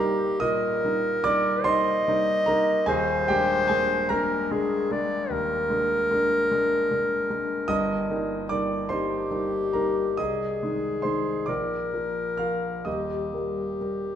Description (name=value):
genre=classical, romantic duo for clarinet and grand piano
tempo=42-51 BPM (dotted quarters)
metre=12/8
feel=rubato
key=Eb major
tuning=A4 = 442 Hz
part: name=clear clarinet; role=melody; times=0.0-14.2 s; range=G4 to Eb5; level=-25 LUFS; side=left 1 dB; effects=none
part: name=warm concert grand piano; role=accompaniment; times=0.0-14.2 s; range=Eb1 to F6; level=-26 LUFS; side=right 1 dB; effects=none
room=moderate recital hall reverb, RT60 1.8 s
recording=minimal, uncompressed stereo recording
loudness=-23 LUFS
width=side -9 dB against mid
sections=0.0-14.2 A section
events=none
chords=0.0 Eb; 2.9 Bb7/Eb; 7.7 Eb/G; 10.2 Ab/C; 11.5 Bb; 12.9 Eb